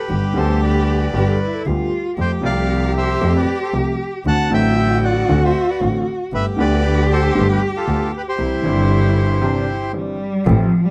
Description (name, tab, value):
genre	tango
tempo	116 BPM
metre	4/4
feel	rubato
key	C major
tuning	A4 = 440 Hz
part	bandoneon	melody	0.0-9.9 s	F4 to A5	-25 LUFS	equal	none
part	warm cello	second line	0.0-10.9 s	E3 to G4	-24 LUFS	equal	none
part	clear upright piano	accompaniment	0.1-10.7 s	G1 to G4	-24 LUFS	equal	none
part	rich double bass	bass	0.1-10.7 s	G1 to F2	-21 LUFS	equal	none
part	hollow concert flute	second line	1.1-2.0 s	G4 to B4	-30 LUFS	equal	tape echo
room	light reverb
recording	close, detailed microphones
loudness	-18 LUFS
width	mono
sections	0.0-10.5 A section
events	break 9.4-10.5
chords	0.1 G; 2.2 Fadd9; 4.3 D7; 6.3 Gadd9; 8.4 C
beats	| 0.10 0.61 1.13 1.66 | 2.18 2.70 3.22 3.73 | 4.25 4.77 5.29 5.80 | 6.32 6.84 7.35 7.87 | 8.39 8.90 9.42 9.94 | 10.46